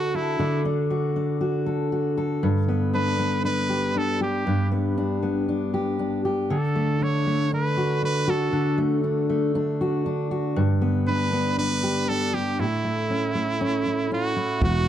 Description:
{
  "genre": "acoustic pop",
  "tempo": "118 BPM",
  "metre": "4/4",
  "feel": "swing 55% on 16ths",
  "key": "D major",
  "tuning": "A4 = 440 Hz",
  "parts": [
    { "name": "brilliant trumpet", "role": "melody", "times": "0.0-14.9 s", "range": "E4 to C#5", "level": "-27 LUFS", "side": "right 2 dB", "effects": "none" },
    { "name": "fingerpicked steel-string acoustic guitar", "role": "accompaniment", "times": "0.0-14.9 s", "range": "E2 to A4", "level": "-22 LUFS", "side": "equal", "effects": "none" },
    { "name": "sustaining fretless electric bass", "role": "bass", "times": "14.6-14.9 s", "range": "E1", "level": "-23 LUFS", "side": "equal", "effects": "wide subtle chorus" },
    { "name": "kick drum", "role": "drums", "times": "14.6-14.7 s", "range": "none", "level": "-25 LUFS", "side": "right 1 dB", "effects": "none" }
  ],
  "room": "little or no reverb",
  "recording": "dark, warm production",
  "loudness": "-22 LUFS",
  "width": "side -10 dB against mid",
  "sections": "0.0-14.6 A section",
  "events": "none",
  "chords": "0.0 D; 2.4 G; 6.5 D; 10.6 G; 12.6 A"
}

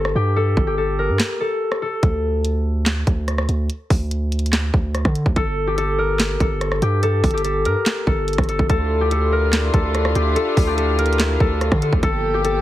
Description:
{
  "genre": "hip hop, trap",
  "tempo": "144 BPM",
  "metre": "4/4",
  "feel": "half-time",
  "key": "D minor",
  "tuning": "A4 = 444 Hz",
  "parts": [
    { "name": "concert harp", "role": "melody", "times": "0.0-12.6 s", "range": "G4 to Bb4", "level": "-21 LUFS", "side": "left 2 dB", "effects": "low-pass filter, digital delay" },
    { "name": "long sustained 808-style bass", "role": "bass", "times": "0.0-12.6 s", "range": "G1 to D3", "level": "-21 LUFS", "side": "equal", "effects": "none" },
    { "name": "trap drum kit", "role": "drums", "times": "0.1-12.5 s", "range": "handclaps, hi-hat, kick drum, rim click, snare drum", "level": "-20 LUFS", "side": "equal", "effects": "none" },
    { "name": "warm studio string section", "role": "sustained chords", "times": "8.7-12.6 s", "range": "F3 to G4", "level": "-26 LUFS", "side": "left 2 dB", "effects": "none" }
  ],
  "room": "digital ambience",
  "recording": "heavily compressed radio sound",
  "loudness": "-17 LUFS",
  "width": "side -14 dB against mid",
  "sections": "0.0-8.7 A section; 8.7-12.6 B section",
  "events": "break 0.0-2.0",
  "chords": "0.0 Gmadd9; 2.0 N.C.; 5.4 Gmadd9; 8.7 Dmadd9; 12.0 Gm7"
}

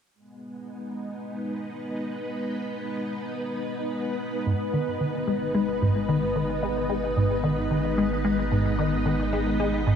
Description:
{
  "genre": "ambient",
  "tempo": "111 BPM",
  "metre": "4/4",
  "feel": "straight",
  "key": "G# minor",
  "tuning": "A4 = 439 Hz",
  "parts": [
    { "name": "string machine, full ensemble", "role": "sustained chords", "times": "0.1-10.0 s", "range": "G#3 to D#5", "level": "-28 LUFS", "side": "equal", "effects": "ensemble chorus" },
    { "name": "resonant blip pluck", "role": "riff", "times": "4.5-10.0 s", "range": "G#2 to G#3", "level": "-25 LUFS", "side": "left 1 dB", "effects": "phaser, wide subtle chorus, ping-pong delay" },
    { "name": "round analog bass", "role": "bass", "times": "4.5-10.0 s", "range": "G#1", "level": "-32 LUFS", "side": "right 1 dB", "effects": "none" }
  ],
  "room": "wet huge ambient reverb, RT60 7.4 s",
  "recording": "none",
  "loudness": "-24 LUFS",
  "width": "side -8 dB against mid",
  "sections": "0.1-4.5 A section; 4.5-10.0 B section",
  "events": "none",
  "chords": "0.1 G#m"
}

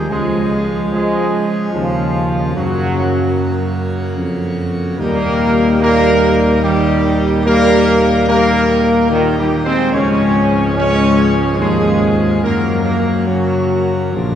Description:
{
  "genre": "classical",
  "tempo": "73 BPM",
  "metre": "3/4",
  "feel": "straight",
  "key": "unclear",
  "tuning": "A4 = 440 Hz",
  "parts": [
    { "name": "mellow trumpet section", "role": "melody", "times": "0.0-14.4 s", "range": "Eb4 to Db5", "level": "-23 LUFS", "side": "equal", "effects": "none" },
    { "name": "mellow French horn section", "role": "sustained chords", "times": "0.0-14.4 s", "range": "Bb2 to Ab3", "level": "-19 LUFS", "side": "left 2 dB", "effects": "none" },
    { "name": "pipe organ, full organ", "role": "sustained chords", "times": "0.0-14.4 s", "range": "Gb2 to Bb4", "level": "-24 LUFS", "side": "left 1 dB", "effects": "none" },
    { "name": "warm tuba", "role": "bass", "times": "0.0-14.4 s", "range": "Bb1 to Gb2", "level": "-19 LUFS", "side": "right 1 dB", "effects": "none" },
    { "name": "bright trombone section", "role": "sustained chords", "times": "0.1-14.4 s", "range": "Eb3 to Db4", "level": "-16 LUFS", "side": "right 1 dB", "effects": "none" },
    { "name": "timpani", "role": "percussion", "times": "14.1-14.4 s", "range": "Bb2", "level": "-24 LUFS", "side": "left 1 dB", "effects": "none" }
  ],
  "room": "wet church reverb, RT60 3.6 s",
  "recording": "recorded in a church or concert hall",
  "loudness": "-12 LUFS",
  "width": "side -9 dB against mid",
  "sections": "0.0-14.4 A section",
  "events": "timpani fill 14.1",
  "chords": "0.1 Db; 2.5 Gb; 5.0 Eb; 9.9 Db; 12.4 Gb"
}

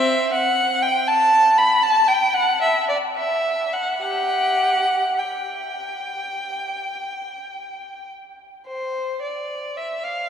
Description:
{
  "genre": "classical, baroque-style suite movement for unaccompanied violin",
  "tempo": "50-61 BPM",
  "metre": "4/4",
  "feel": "rubato",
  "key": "G major",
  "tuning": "A4 = 440 Hz",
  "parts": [
    { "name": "warm violin", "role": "solo", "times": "0.0-10.3 s", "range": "C4 to B5", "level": "-19 LUFS", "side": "equal", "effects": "none" }
  ],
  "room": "wet cathedral reverb, RT60 6.8 s",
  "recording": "heard from further back in the room",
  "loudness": "-18 LUFS",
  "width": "side -8 dB against mid",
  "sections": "0.0-8.7 A section; 8.7-10.3 A section",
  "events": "none",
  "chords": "none"
}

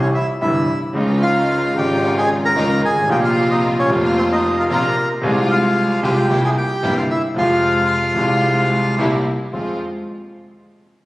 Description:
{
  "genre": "tango",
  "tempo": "112 BPM",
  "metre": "4/4",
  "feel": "rubato",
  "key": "F minor",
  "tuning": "A4 = 440 Hz",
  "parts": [
    { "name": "bandoneon", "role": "melody", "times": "0.0-9.0 s", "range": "C4 to Bb5", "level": "-19 LUFS", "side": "equal", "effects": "none" },
    { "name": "warm concert grand piano", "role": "accompaniment", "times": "0.0-9.8 s", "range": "F1 to F4", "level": "-19 LUFS", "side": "equal", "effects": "none" },
    { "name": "dark double bass", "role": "bass", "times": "0.0-9.8 s", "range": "F1 to F2", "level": "-25 LUFS", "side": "equal", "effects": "none" },
    { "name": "rich symphonic string section", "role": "stabs", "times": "1.0-9.8 s", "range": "Ab3 to F4", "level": "-24 LUFS", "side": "equal", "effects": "none" }
  ],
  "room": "wet scoring stage reverb, RT60 1.9 s",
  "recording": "recorded on a phone in the room, studio reverb, compression",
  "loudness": "-15 LUFS",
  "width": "side -18 dB against mid",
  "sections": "0.0-9.5 A section; 9.5-11.1 B section",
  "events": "none",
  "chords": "0.0 C; 1.0 Dbadd9; 3.1 Bbsus2; 5.2 Fm/C; 6.3 C7; 7.4 Fm; 9.0 C7; 9.5 Fm"
}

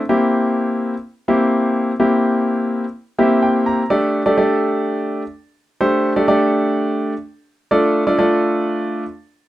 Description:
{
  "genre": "pop",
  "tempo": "126 BPM",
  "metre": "4/4",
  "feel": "straight",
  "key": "unclear",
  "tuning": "A4 = 440 Hz",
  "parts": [
    { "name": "warm concert grand piano", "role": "solo", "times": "0.1-9.0 s", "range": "A3 to Bb5", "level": "-15 LUFS", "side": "equal", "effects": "none" }
  ],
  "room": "wet small room reverb, RT60 0.5 s",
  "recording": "rough home demo mix",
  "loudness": "-15 LUFS",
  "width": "side -14 dB against mid",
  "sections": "0.0-3.9 A section; 3.9-9.5 B section",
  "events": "grand piano fill 2.9-3.9",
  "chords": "0.1 C7; 3.9 Gsus2; 7.7 Dm"
}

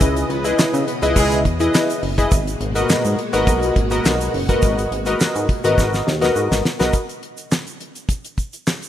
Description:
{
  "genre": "early-eighties boogie funk",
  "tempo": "104 BPM",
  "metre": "4/4",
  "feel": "straight",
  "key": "G# minor",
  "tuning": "A4 = 440 Hz",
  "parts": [
    { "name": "funky polysynth comp", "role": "accompaniment", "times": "0.0-6.9 s", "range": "E4 to D#5", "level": "-20 LUFS", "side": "left 2 dB", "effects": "chorus" },
    { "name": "string machine, violins", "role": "sustained chords", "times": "0.0-6.9 s", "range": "A#2 to D#5", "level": "-27 LUFS", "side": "right 1 dB", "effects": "ensemble chorus" },
    { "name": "chorused synth bass", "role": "bass", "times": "0.0-6.9 s", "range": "F#1 to C#3", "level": "-22 LUFS", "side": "equal", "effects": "none" },
    { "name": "damped 70s drum kit", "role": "drums", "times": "0.0-8.9 s", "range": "handclaps, hi-hat, kick drum, snare drum", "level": "-20 LUFS", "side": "equal", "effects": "none" },
    { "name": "tube shaker", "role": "percussion", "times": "0.0-8.9 s", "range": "none", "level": "-34 LUFS", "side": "right 7 dB", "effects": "none" },
    { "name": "clear horn section", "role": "second line", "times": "0.3-1.4 s", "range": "G#3 to B4", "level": "-26 LUFS", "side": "equal", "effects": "none" }
  ],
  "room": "light reverb, small room ambience",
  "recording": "rough home demo mix, lossy compression artefacts",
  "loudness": "-16 LUFS",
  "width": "side -11 dB against mid",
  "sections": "0.0-6.9 A section; 6.9-8.9 B section",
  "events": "drum fill 5.8-6.9",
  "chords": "0.0 C#m9; 2.3 G#m9; 6.9 N.C."
}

